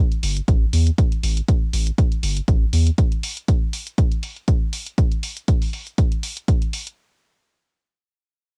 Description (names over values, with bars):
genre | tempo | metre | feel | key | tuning
acid house | 120 BPM | 4/4 | swing 54% on 16ths | unclear | A4 = 440 Hz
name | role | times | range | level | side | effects
electronic hi-hat | drums | 0.1-7.0 s | none | -32 LUFS | equal | none
round analog bass | bass | 0.2-2.9 s | G1 to E2 | -21 LUFS | equal | sidechain pumping
electronic kick drum | drums | 0.5-6.6 s | none | -20 LUFS | equal | none
room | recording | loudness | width
little or no reverb | home recording on cassette | -21 LUFS | mono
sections
0.0-7.0 A section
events
none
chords
none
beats
0.48 | 0.98 1.48 1.98 2.48 | 2.98 3.48 3.98 4.48 | 4.98 5.48 5.98 6.48